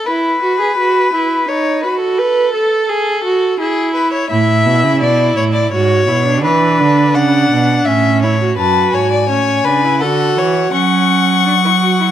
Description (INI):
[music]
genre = classical, baroque-style fugue for string quartet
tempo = 84 BPM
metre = 3/4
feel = straight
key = A major, F# minor from 8.6 s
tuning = A4 = 440 Hz
[part]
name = rich violin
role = second line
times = 0.0-12.1 s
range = G#4 to F#5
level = -16 LUFS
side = left 3 dB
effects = none
[part]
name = rich viola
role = accompaniment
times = 0.1-12.1 s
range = C#4 to B4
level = -16 LUFS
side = right 3 dB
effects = none
[part]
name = rich cello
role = bass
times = 4.3-12.1 s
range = F#2 to F#3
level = -16 LUFS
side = right 4 dB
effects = none
[part]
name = rich violin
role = melody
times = 8.6-12.1 s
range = F#5 to C#6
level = -16 LUFS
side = left 12 dB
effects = none
[sound]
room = moderate scoring stage reverb, RT60 1.6 s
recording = close, detailed microphones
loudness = -11 LUFS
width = side -10 dB against mid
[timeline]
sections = 0.0-8.6 A section; 8.6-12.1 B section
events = none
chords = 0.1 E5; 1.5 B/D#; 2.2 B5/A; 3.6 E; 4.3 A; 5.7 E/G#; 6.4 E5; 7.9 A; 8.6 F#m; 10.0 D; 10.7 C#sus4/F#